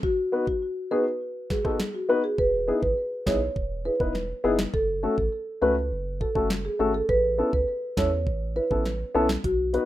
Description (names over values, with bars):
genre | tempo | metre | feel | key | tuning
dancehall | 102 BPM | 4/4 | straight | unclear | A4 = 440 Hz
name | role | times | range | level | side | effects
marimba with medium mallets | melody | 0.0-9.6 s | F#4 to C#5 | -26 LUFS | right 1 dB | none
afro-pop drum kit | drums | 0.0-9.9 s | hi-hat, kick drum, rim click, snare drum | -30 LUFS | right 1 dB | none
dark baby grand piano | accompaniment | 0.3-9.9 s | A3 to B4 | -25 LUFS | left 2 dB | sidechain pumping
round analog bass | bass | 2.4-9.8 s | E1 to E2 | -31 LUFS | right 1 dB | none
room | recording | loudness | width
light reverb | rough home demo mix | -23 LUFS | side -14 dB against mid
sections
0.0-9.9 A section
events
none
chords
0.0 B; 2.4 Emaj7; 4.7 F#m; 7.1 Aadd9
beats
| 0.03 0.62 1.21 1.80 | 2.38 2.97 3.56 4.15 | 4.74 5.33 5.91 6.50 | 7.09 7.68 8.27 8.86 | 9.44